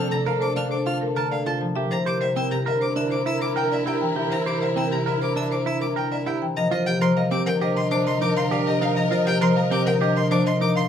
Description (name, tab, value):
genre	classical, minimalist pattern music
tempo	100 BPM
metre	4/4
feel	straight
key	unclear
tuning	A4 = 440 Hz
part	marimba with medium hard mallets	melody	0.0-10.9 s	G4 to A5	-27 LUFS	left 6 dB	none
part	concert harp	accompaniment	0.0-10.9 s	C3 to C4	-24 LUFS	equal	none
part	warm symphonic string section	sustained chords	0.0-10.9 s	D4 to Eb5	-31 LUFS	left 2 dB	none
part	clean electric guitar	arpeggios	0.0-10.8 s	C4 to C5	-29 LUFS	right 9 dB	none
part	rich violin	arpeggios	0.0-10.9 s	Eb5 to F6	-29 LUFS	left 2 dB	none
part	hollow alto flute	second line	0.1-10.9 s	A4 to Bb4	-30 LUFS	right 5 dB	none
room	moderate large studio reverb, RT60 1.0 s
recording	minimal, uncompressed stereo recording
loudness	-20 LUFS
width	side -8 dB against mid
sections	0.0-6.6 A section; 6.6-10.9 B section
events	none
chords	0.0 Bbmaj7; 1.8 C7; 6.6 F9sus4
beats	0.56 1.16 | 1.76 2.36 2.96 3.56 | 4.16 4.76 5.36 5.96 | 6.56 7.16 7.76 8.36 | 8.96 9.56 10.16 10.76